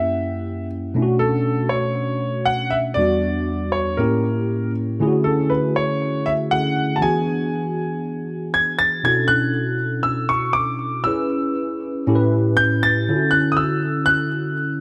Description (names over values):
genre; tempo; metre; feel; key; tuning
pop; 119 BPM; 4/4; straight; unclear; A4 = 440 Hz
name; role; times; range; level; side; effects
clear concert grand piano; melody; 0.0-14.8 s; A4 to A6; -23 LUFS; equal; delay
tine electric piano; accompaniment; 0.0-14.8 s; E2 to B4; -23 LUFS; equal; analog chorus
room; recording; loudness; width
light reverb, studio reverb; none; -20 LUFS; mono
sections
0.0-9.0 A section; 9.0-14.8 B section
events
none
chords
0.0 F#7b9; 0.9 Bm9; 3.0 Em7; 4.0 A7b9; 5.0 Dmaj9#11; 7.0 E9; 9.0 Bm11; 11.1 C#m7; 12.1 A7; 13.1 Dmaj9